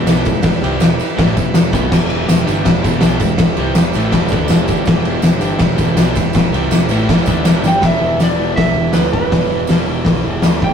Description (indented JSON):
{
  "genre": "garage rock duo or trio",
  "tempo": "162 BPM",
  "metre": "4/4",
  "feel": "straight",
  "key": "E minor",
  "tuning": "A4 = 440 Hz",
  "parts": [
    { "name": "overdriven combo organ", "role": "sustained chords", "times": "0.0-10.7 s", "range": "G4 to E5", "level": "-26 LUFS", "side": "left 1 dB", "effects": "none" },
    { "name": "fuzz guitar", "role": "riff", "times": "0.0-10.7 s", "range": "E2 to D4", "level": "-20 LUFS", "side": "equal", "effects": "distortion" },
    { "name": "growling picked electric bass", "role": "bass", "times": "0.0-10.7 s", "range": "E1 to D2", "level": "-22 LUFS", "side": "equal", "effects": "overdrive" },
    { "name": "oversized low-tuned drum kit", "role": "drums", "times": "0.1-10.7 s", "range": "crash cymbal, hi-hat, kick drum, ride cymbal, snare drum", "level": "-13 LUFS", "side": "equal", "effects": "none" },
    { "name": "tambourine", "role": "percussion", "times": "0.1-10.5 s", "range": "none", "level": "-34 LUFS", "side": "right 8 dB", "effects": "none" },
    { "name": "electric slide guitar", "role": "melody", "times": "7.7-10.7 s", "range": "B4 to G5", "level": "-18 LUFS", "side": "right 2 dB", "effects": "none" }
  ],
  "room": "light reverb",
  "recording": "rough rehearsal-room recording",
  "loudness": "-12 LUFS",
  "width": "side -7 dB against mid",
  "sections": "0.0-7.8 A section; 7.8-10.7 B section",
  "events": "drum fill 7.6",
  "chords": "0.0 Em"
}